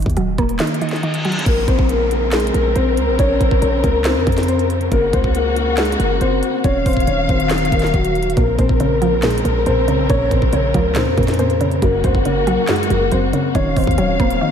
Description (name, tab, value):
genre	hip hop, trap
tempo	139 BPM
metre	4/4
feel	half-time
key	Bb minor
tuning	A4 = 440 Hz
part	mallet-like synth pluck	accompaniment	0.0-1.5, 8.4-14.5 s	Gb2 to Bb3	-20 LUFS	right 2 dB	chorus
part	hard-hitting 808-style bass	bass	0.0-14.4 s	Eb1 to F2	-20 LUFS	equal	none
part	trap drum kit	drums	0.0-14.4 s	crash cymbal, handclaps, hi-hat, kick drum, snare drum	-21 LUFS	equal	none
part	reverse cymbal and downlifter	sound effects	0.8-4.9 s	none	-27 LUFS	right 1 dB	none
part	dark grand piano	melody	1.5-14.5 s	Gb3 to Db5	-19 LUFS	left 2 dB	ping-pong delay
part	dark symphonic string section	sustained chords	1.5-14.5 s	Db3 to F5	-22 LUFS	left 2 dB	none
room	moderate lush hall reverb, RT60 1.7 s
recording	dreamy mix soaked in reverb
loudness	-14 LUFS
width	side -8 dB against mid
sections	0.0-1.5 A section; 1.5-14.5 B section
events	kick muted 0.6-1.5; reverse cymbal 0.8-1.5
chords	0.0 Ebm; 1.5 Bbmadd9; 4.9 Gb; 6.6 Ebmadd9; 8.4 Bbmadd9; 11.8 Gb; 13.5 Ebmadd9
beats	0.17 0.60 1.03 | 1.46 1.90 2.33 2.76 | 3.19 3.62 4.05 4.48 | 4.92 5.35 5.78 6.21 | 6.64 7.07 7.51 7.94 | 8.37 8.80 9.23 9.66 | 10.10 10.53 10.96 11.39 | 11.82 12.25 12.69 13.12 | 13.55 13.98 14.41